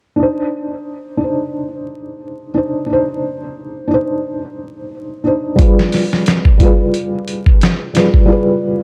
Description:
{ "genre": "trip hop", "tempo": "89 BPM", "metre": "4/4", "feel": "swing 56% on 16ths", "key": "C harmonic minor", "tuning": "A4 = 440 Hz", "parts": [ { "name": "felt-muted upright piano", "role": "accompaniment", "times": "0.2-8.8 s", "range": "G3 to C5", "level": "-19 LUFS", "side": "equal", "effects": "tremolo, low-pass filter, tape echo" }, { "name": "dusty soul sampler-style drum kit", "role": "drums", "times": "5.6-8.3 s", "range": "hi-hat, kick drum, snare drum", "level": "-14 LUFS", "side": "equal", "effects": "none" } ], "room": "light reverb, digital ambience", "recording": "dark, warm production, vinyl crackle", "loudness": "-15 LUFS", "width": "mono", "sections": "0.2-8.8 A section", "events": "filter sweep on felt piano 0.2-8.8", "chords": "0.2 Cmadd9; 5.6 G7b9", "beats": "| 0.20 0.87 1.54 2.22 | 2.89 3.57 4.24 4.92 | 5.59 6.26 6.94 7.61 | 8.29" }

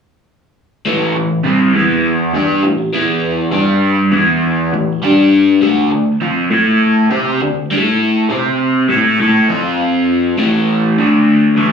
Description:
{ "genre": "rock", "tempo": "101 BPM", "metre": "4/4", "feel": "straight", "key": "unclear", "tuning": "A4 = 440 Hz", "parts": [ { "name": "crunchy overdriven guitar", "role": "solo", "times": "0.9-11.7 s", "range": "A2 to C5", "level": "-11 LUFS", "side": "equal", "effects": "phaser, slapback echo" } ], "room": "moderate club reverb, RT60 0.8 s", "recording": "live gig heard through the venue's PA, club reverb, small room ambience", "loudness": "-11 LUFS", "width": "side -6 dB against mid", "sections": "0.9-10.4 A section; 10.4-11.7 B section", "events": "none", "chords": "0.9 A5; 1.8 E5; 2.3 A5; 2.9 E5; 3.5 G5; 4.1 E5; 4.7 A5; 5.0 G5; 5.6 D5; 6.5 A5; 7.1 D5; 7.7 A5; 8.3 C5; 8.9 A5; 9.5 F5; 10.4 A5; 11.0 D5", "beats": "| 0.86 1.46 2.05 2.65 | 3.24 3.83 4.43 5.02 | 5.62 6.21 6.81 7.40 | 8.00 8.59 9.19 9.78 | 10.38 10.97 11.57" }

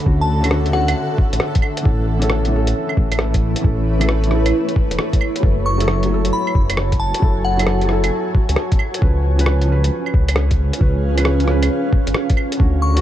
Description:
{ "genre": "future garage", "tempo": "134 BPM", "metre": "4/4", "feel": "swing 66% on 16ths", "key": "unclear", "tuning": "A4 = 440 Hz", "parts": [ { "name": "felt-muted upright piano", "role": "accompaniment", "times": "0.0-13.0 s", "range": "D3 to B4", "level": "-24 LUFS", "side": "right 1 dB", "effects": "sidechain pumping, analog delay" }, { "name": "granular cloud pad", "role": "sustained chords", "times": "0.0-13.0 s", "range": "D3 to A5", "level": "-23 LUFS", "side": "equal", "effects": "built-in reverb, sidechain pumping" }, { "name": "dark detuned saw bass", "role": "bass", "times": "0.1-13.0 s", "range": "E1 to D2", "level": "-18 LUFS", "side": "equal", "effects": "tube saturation, sidechain pumping" }, { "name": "electronic kick drum", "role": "drums", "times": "0.1-12.7 s", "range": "none", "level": "-16 LUFS", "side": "equal", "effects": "none" }, { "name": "glassy synth bell", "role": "melody", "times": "0.2-0.9, 5.7-7.8, 12.8-13.0 s", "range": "F#5 to C#6", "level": "-25 LUFS", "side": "left 2 dB", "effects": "chorus, tape echo" }, { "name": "lo-fi sampler-style drum kit", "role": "drums", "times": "0.4-13.0 s", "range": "claves, hi-hat, rim click", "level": "-23 LUFS", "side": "equal", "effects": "none" } ], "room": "little or no reverb", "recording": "dark, warm production", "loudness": "-15 LUFS", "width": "side -12 dB against mid", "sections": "0.0-13.0 A section", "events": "none", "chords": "0.0 Dmaj7; 1.8 A; 5.4 F#m7; 9.0 C#7", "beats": "| 0.06 0.51 0.95 1.40 | 1.85 2.30 2.75 3.19 | 3.64 4.09 4.54 4.98 | 5.43 5.88 6.33 6.77 | 7.22 7.67 8.12 8.56 | 9.01 9.46 9.91 10.36 | 10.80 11.25 11.70 12.15 | 12.60" }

